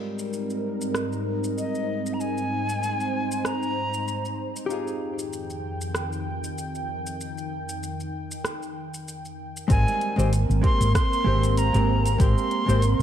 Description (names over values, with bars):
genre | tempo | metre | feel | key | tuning
sunset chillout | 96 BPM | 4/4 | swing 55% on 16ths | unclear | A4 = 440 Hz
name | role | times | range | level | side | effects
hollow-body jazz guitar | accompaniment | 0.0-12.8 s | G3 to C5 | -31 LUFS | left 1 dB | auto-pan, tape echo
lush unison pad | sustained chords | 0.0-13.0 s | F2 to G5 | -29 LUFS | right 1 dB | chorus
deep house drum kit | drums | 0.2-13.0 s | hi-hat, rim click, shaker | -34 LUFS | right 1 dB | small room reverb
breathy bright jazz flute | melody | 1.6-4.4, 9.7-13.0 s | Eb5 to C6 | -28 LUFS | equal | tape echo
woody fretless electric bass | bass | 9.7-13.0 s | Ab1 | -21 LUFS | equal | tube saturation, lush chorus
electronic kick drum | drums | 9.7-12.3 s | none | -22 LUFS | equal | small room reverb
room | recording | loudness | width
moderate scoring stage reverb, RT60 1.7 s | dark, warm production | -23 LUFS | side -10 dB against mid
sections
0.0-9.7 A section; 9.7-13.0 B section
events
none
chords
0.0 Abmaj9; 4.7 Fm9; 9.7 Abmaj9